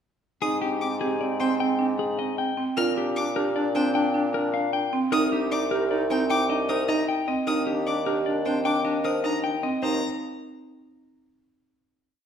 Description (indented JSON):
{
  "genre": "classical, minimalist pattern music",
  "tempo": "153 BPM",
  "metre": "6/4",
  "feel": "straight",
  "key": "Eb major",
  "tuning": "A4 = 440 Hz",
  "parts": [
    { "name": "clean electric guitar", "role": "melody", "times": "0.4-10.0 s", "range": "G4 to G5", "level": "-29 LUFS", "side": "left 6 dB", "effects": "none" },
    { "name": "warm clarinet", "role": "second line", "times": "0.4-9.6 s", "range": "C4 to Eb4", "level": "-29 LUFS", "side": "right 1 dB", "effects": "none" },
    { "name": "buzzing marimba with medium hard mallets", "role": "arpeggios", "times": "0.4-10.0 s", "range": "C4 to C5", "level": "-28 LUFS", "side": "right 4 dB", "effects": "none" },
    { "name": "rich violin", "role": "arpeggios", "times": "0.4-10.0 s", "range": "G5 to F6", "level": "-32 LUFS", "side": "left 3 dB", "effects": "none" },
    { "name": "warm bassoon", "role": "bass", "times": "0.4-10.0 s", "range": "C2 to Bb2", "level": "-29 LUFS", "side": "equal", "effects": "none" }
  ],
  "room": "wet recital hall reverb, RT60 1.3 s",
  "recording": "heard from further back in the room",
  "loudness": "-22 LUFS",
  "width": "side -8 dB against mid",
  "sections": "0.4-9.8 A section; 9.8-12.2 final chord",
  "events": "none",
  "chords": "0.4 Abmaj7; 2.8 Bb6; 5.1 Cm7; 7.5 Ebmaj7; 9.8 Eb5"
}